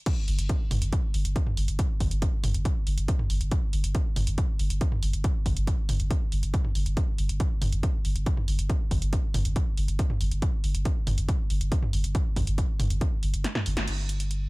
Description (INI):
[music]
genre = driving peak-time techno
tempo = 139 BPM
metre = 4/4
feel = straight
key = unclear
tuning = A4 = 442 Hz
[part]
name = electronic kick drum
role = drums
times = 0.1-13.1 s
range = none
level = -26 LUFS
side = equal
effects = small room ambience
[part]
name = punchy analog drum machine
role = drums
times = 0.1-14.4 s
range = crash cymbal, hi-hat, snare drum, toms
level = -32 LUFS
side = right 1 dB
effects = small room ambience
[part]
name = saturated sub bass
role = bass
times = 0.3-14.5 s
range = G1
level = -28 LUFS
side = equal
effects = overdrive, sidechain pumping, low-pass filter
[sound]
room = little or no reverb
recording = none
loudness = -24 LUFS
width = side -24 dB against mid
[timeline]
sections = 0.1-13.9 A section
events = drop 0.1-13.9; kick drops out 13.4-13.9; drum fill 13.4-13.9; band accent 13.8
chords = none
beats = | 0.06 0.49 0.93 1.36 | 1.79 2.22 2.65 3.08 | 3.52 3.95 4.38 4.81 | 5.24 5.67 6.11 6.54 | 6.97 7.40 7.83 8.26 | 8.70 9.13 9.56 9.99 | 10.42 10.85 11.29 11.72 | 12.15 12.58 13.01 13.44 | 13.88 14.31